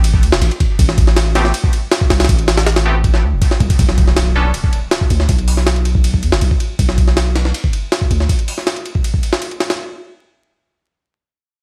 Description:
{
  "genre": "drum and bass, jungle",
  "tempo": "160 BPM",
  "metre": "4/4",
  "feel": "straight",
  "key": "unclear",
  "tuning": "A4 = 440 Hz",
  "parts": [
    { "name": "long sustained 808-style bass", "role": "bass", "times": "0.0-8.3 s", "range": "E1 to E2", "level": "-17 LUFS", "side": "equal", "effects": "tube saturation" },
    { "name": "jungle sampler-style drum kit", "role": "drums", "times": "0.0-9.8 s", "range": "hi-hat, kick drum, ride cymbal, snare drum", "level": "-17 LUFS", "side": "equal", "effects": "none" },
    { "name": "band-passed chord stab", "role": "stabs", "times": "1.4-4.5 s", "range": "A3 to A4", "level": "-26 LUFS", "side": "equal", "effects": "chorus, dub echo" },
    { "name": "impact", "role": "sound effects", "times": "3.8-5.3 s", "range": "none", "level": "-27 LUFS", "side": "equal", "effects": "none" }
  ],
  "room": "little or no reverb",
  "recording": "vinyl crackle",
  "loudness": "-15 LUFS",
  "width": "mono",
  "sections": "0.0-3.8 A section; 3.8-9.8 B section",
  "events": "drop 0.0-3.8; impact 3.8-5.3",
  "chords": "0.0 Am; 3.8 N.C.",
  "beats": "0.04 0.42 | 0.79 1.17 1.54 1.92 | 2.29 2.67 3.04 3.42 | 3.79 4.17 4.54 4.92 | 5.29 5.67 6.04 6.42 | 6.79 7.17 7.54 7.92 | 8.29 8.67 9.04 9.42"
}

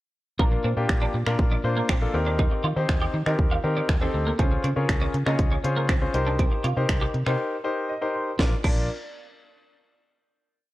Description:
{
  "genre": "dance-pop",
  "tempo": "120 BPM",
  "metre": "4/4",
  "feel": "straight",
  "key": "Bb major",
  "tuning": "A4 = 440 Hz",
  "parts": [
    { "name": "clear concert grand piano", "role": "accompaniment", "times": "0.4-8.9 s", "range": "Bb3 to C6", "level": "-27 LUFS", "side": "left 2 dB", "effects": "sidechain pumping" },
    { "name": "twelve-string electric guitar", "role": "riff", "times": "0.4-8.8 s", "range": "Bb3 to G4", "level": "-32 LUFS", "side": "right 3 dB", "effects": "ensemble chorus" },
    { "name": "vintage muted fingered electric bass", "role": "bass", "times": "0.4-8.9 s", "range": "Bb1 to Eb3", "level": "-26 LUFS", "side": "equal", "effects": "sidechain pumping" },
    { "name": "house drum kit", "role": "drums", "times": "0.4-8.8 s", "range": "crash cymbal, finger snaps, hi-hat, kick drum, snare drum", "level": "-24 LUFS", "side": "equal", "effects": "none" }
  ],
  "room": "light reverb",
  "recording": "worn, warbling old tape, cassette tape, warbly pitch drift",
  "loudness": "-22 LUFS",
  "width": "side -17 dB against mid",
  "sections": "0.4-8.4 verse; 8.4-10.4 final chord",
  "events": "break 7.4-8.4; grand piano fill 7.6-8.4",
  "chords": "0.4 Bb; 2.1 Eb6; 4.4 Dbmaj7; 6.1 Cm7; 8.4 Bb",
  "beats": "| 0.39 0.89 1.39 1.89 | 2.39 2.89 3.39 3.89 | 4.39 4.89 5.39 5.89 | 6.39 6.89 7.39 7.89 | 8.39"
}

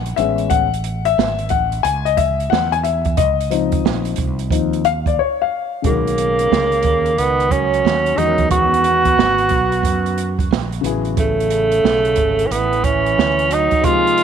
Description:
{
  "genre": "hip hop, jazz-hop",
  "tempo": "90 BPM",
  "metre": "4/4",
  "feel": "swing 66% on 16ths",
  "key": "unclear",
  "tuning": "A4 = 440 Hz",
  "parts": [
    { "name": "dark concert grand piano", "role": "accompaniment", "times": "0.0-14.2 s", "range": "B#2 to G#5", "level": "-20 LUFS", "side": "left 12 dB", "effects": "none" },
    { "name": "mellow fretless electric bass", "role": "bass", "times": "0.0-13.8 s", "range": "G#1 to F#2", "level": "-23 LUFS", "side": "right 1 dB", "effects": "none" },
    { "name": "open jazz drum kit", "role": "drums", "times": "0.1-14.2 s", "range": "hi-hat, kick drum, snare drum", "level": "-21 LUFS", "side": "right 6 dB", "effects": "none" },
    { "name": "warm trombone", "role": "second line", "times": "5.8-14.2 s", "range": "C#3 to B3", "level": "-24 LUFS", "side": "right 14 dB", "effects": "none" },
    { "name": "breathy tenor saxophone", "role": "melody", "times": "5.9-14.2 s", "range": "A3 to F#4", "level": "-16 LUFS", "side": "right 1 dB", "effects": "none" }
  ],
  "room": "light reverb, studio reverb",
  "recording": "1960s-style stereo with parts hard left and right",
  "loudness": "-14 LUFS",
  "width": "side -7 dB against mid",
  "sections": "0.0-5.8 A section; 5.8-14.2 B section",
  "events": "grand piano solo 0.0-5.8; break 5.2-5.8",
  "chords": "0.2 Amaj9; 3.2 C#maj9; 5.8 Bmaj9; 8.2 Emaj9; 10.8 Amaj9",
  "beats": "| 0.51 1.18 1.84 2.51 | 3.18 3.84 4.51 5.18 | 5.84 6.51 7.18 7.84 | 8.51 9.18 9.84 10.51 | 11.18 11.84 12.51 13.18 | 13.84"
}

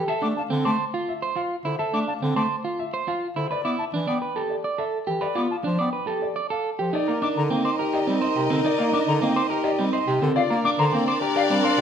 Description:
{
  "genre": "classical, minimalist pattern music",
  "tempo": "105 BPM",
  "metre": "3/4",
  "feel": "straight",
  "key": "D dorian, C minor from 6.9 s",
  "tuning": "A4 = 440 Hz",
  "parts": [
    { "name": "dark baby grand piano", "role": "melody", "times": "0.0-11.8 s", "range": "G4 to A5", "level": "-30 LUFS", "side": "left 9 dB", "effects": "none" },
    { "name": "clear bass clarinet", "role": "accompaniment", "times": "0.0-11.8 s", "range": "C3 to B3", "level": "-28 LUFS", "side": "left 1 dB", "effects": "none" },
    { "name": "electric guitar at the edge of break-up", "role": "arpeggios", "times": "0.0-11.8 s", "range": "C4 to D5", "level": "-25 LUFS", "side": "right 4 dB", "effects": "none" },
    { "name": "mellow silver concert flute", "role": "arpeggios", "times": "0.2-11.4 s", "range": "Eb5 to D6", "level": "-29 LUFS", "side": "left 5 dB", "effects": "none" },
    { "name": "warm clarinet", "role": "second line", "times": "6.9-11.8 s", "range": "D4 to Eb4", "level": "-28 LUFS", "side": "right 2 dB", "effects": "none" },
    { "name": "clear symphonic string section", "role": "sustained chords", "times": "6.9-11.8 s", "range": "Bb4 to Eb5", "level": "-28 LUFS", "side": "left 2 dB", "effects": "none" }
  ],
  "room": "wet recital hall reverb, RT60 1.5 s",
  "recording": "none",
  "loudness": "-21 LUFS",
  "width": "side -8 dB against mid",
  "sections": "0.0-6.9 A section; 6.9-11.8 B section",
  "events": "none",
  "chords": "0.1 Dm7; 3.5 Em7; 5.2 G7; 6.9 Cm7; 10.4 Bb6",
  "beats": "| 0.08 0.65 1.23 | 1.80 2.37 2.94 | 3.51 4.08 4.65 | 5.22 5.80 6.37 | 6.94 7.51 8.08 | 8.65 9.22 9.80 | 10.37 10.94 11.51"
}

